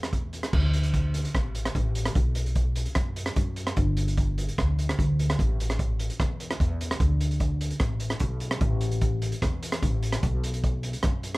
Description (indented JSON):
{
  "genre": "calypso",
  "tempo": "148 BPM",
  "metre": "4/4",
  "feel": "straight",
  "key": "D major",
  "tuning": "A4 = 440 Hz",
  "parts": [
    { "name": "upright bass", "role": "bass", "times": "0.0-11.4 s", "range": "G1 to F#2", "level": "-26 LUFS", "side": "equal", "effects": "none" },
    { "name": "crunchy breakbeat drum kit", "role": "drums", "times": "0.0-11.4 s", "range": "crash cymbal, hi-hat, kick drum, rim click", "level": "-27 LUFS", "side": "right 1 dB", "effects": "none" }
  ],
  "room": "little or no reverb",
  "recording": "none",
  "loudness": "-24 LUFS",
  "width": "side -21 dB against mid",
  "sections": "0.5-11.4 A section",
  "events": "none",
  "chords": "none"
}